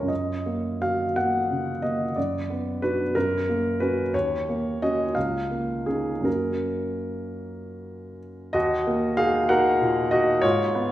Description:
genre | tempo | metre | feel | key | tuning
classical, romantic character piece for solo piano | 50-65 BPM (dotted quarters) | 6/8 | rubato | F# major | A4 = 441 Hz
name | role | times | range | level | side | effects
clear baby grand piano | solo | 0.0-10.9 s | C#2 to F#5 | -22 LUFS | equal | none
room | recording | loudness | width
wet recital hall reverb, RT60 1.4 s | none | -22 LUFS | side -13 dB against mid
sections
0.0-8.5 A section; 8.5-10.9 B section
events
none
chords
0.1 F#; 2.2 Bm/F#; 3.2 F#; 4.1 D#m7; 5.2 C#69; 6.3 F#; 8.5 Ebm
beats
| 0.10 1.17 | 2.17 3.15 | 4.13 5.16 | 6.26 7.44 | 8.55 9.50 | 10.43

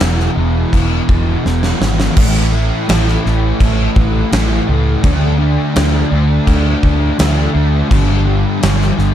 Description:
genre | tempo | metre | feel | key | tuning
rock, shoegaze and dream pop | 84 BPM | 4/4 | straight | unclear | A4 = 440 Hz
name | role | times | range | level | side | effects
thick fuzz guitar | riff | 0.0-9.1 s | E2 to D4 | -16 LUFS | equal | distortion, analog chorus
vintage muted fingered electric bass | bass | 0.0-9.1 s | E1 to D2 | -15 LUFS | equal | none
gated 80s drum kit | drums | 0.0-9.1 s | crash cymbal, kick drum, snare drum | -17 LUFS | equal | none
room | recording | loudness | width
little or no reverb | dark, warm production | -11 LUFS | side -10 dB against mid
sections
0.0-2.2 A section; 2.2-9.1 A section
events
drum fill 1.4-2.2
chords
0.0 E5; 2.2 A5; 5.0 D5; 7.9 G5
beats
0.00 0.72 1.44 | 2.16 2.88 3.60 4.32 | 5.03 5.75 6.47 7.19 | 7.91 8.63

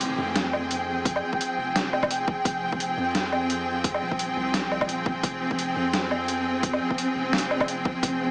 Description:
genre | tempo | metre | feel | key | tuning
half-time drum and bass | 172 BPM | 4/4 | swing 57% on 16ths, half-time | F minor | A4 = 440 Hz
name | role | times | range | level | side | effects
clear studio string section | sustained chords | 0.0-8.3 s | F3 to G5 | -30 LUFS | equal | sidechain pumping
long sustained 808-style bass | bass | 0.0-8.3 s | Eb1 to F2 | -39 LUFS | equal | none
boom bap sampler-style drum kit | drums | 0.0-8.1 s | hi-hat, snare drum, woodblock | -30 LUFS | equal | overdrive
impact | sound effects | 0.0-1.1 s | none | -43 LUFS | equal | none
flickering grainy texture | texture | 0.0-8.3 s | C4 to G5 | -35 LUFS | equal | built-in reverb
electronic kick drum | drums | 1.1-8.1 s | none | -31 LUFS | equal | none
room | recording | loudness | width
moderate huge ambient reverb, RT60 7.8 s | small speaker sound | -26 LUFS | mono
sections
0.0-8.3 A section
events
impact 0.0-1.1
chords
0.0 Fmadd9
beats
0.01 0.36 0.71 | 1.05 1.40 1.75 2.10 | 2.45 2.80 3.15 3.50 | 3.85 4.20 4.54 4.89 | 5.24 5.59 5.94 6.29 | 6.64 6.99 7.33 7.68 | 8.03

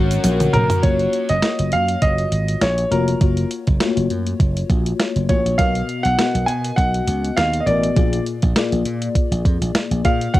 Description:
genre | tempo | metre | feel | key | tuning
1980s-style pop | 101 BPM | 4/4 | swing 55% on 16ths | F# major | A4 = 440 Hz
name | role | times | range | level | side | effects
clear grand piano | melody | 0.0-10.4 s | A#4 to G#5 | -21 LUFS | right 1 dB | plate reverb
FM electric piano with soft pad layer | accompaniment | 0.0-10.4 s | A#2 to D#5 | -24 LUFS | left 6 dB | chorus, tremolo, cassette tape, plate reverb
distorted electric guitar | accompaniment | 0.0-1.4 s | F#3 to F#4 | -28 LUFS | right 1 dB | distortion, analog chorus, cassette tape, plate reverb
slap bass | bass | 0.0-10.4 s | E#1 to A#2 | -21 LUFS | right 1 dB | none
clean 12-bit digital drum machine | drums | 0.1-10.4 s | hi-hat, kick drum, snare drum, toms | -19 LUFS | right 1 dB | cassette tape
egg shaker | percussion | 0.1-0.8 s | none | -37 LUFS | right 11 dB | none
room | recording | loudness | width
moderate studio ambience, RT60 0.5 s | home recording on cassette | -16 LUFS | side -16 dB against mid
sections
0.8-10.4 A section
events
drum fill 0.2-0.8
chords
0.0 F#; 0.8 F#maj7; 5.6 Bmaj7; 8.0 A#7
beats
0.24 | 0.84 1.43 2.03 2.62 | 3.21 3.81 4.40 5.00 | 5.59 6.18 6.78 7.37 | 7.97 8.56 9.15 9.75 | 10.34

